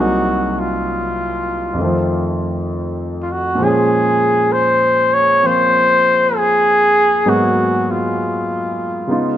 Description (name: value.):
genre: jazz ballad.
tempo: 66 BPM.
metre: 4/4.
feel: swing 66% on 8ths.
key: unclear.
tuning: A4 = 440 Hz.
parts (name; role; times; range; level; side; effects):
breathy trumpet; melody; 0.0-9.4 s; F4 to Db5; -15 LUFS; equal; none.
warm grand piano; accompaniment; 0.0-9.4 s; C2 to Ab4; -18 LUFS; equal; none.
room: moderate lush hall reverb, RT60 2.6 s.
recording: rough home demo mix, nothing above 10.8 kHz.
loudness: -13 LUFS.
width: side -11 dB against mid.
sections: 0.0-9.4 A section.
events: none.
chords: 0.0 Cm7b5; 1.8 F7; 3.6 Bbm7; 7.2 Abm7.